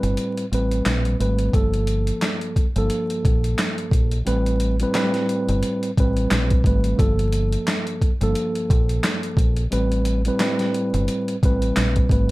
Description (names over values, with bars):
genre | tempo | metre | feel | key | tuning
hip hop, boom-bap hip-hop | 88 BPM | 4/4 | swing 57% on 16ths | unclear | A4 = 440 Hz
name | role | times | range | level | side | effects
mellow tine electric piano | accompaniment | 0.0-12.3 s | G2 to B4 | -23 LUFS | equal | medium stereo tremolo, high-pass filter, low-pass filter
deep dub fingered electric bass | bass | 0.0-12.3 s | G1 to Bb1 | -22 LUFS | equal | none
boom bap sampler-style drum kit | drums | 0.0-12.3 s | handclaps, hi-hat, kick drum, snare drum | -22 LUFS | equal | none
room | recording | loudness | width
little or no reverb | vinyl crackle | -18 LUFS | side -20 dB against mid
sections
0.0-1.5 A section; 1.5-12.3 B section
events
break 0.0-1.5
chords
0.0 Am9; 1.5 Gm9; 4.3 Am9; 7.0 Gm9; 9.7 Am9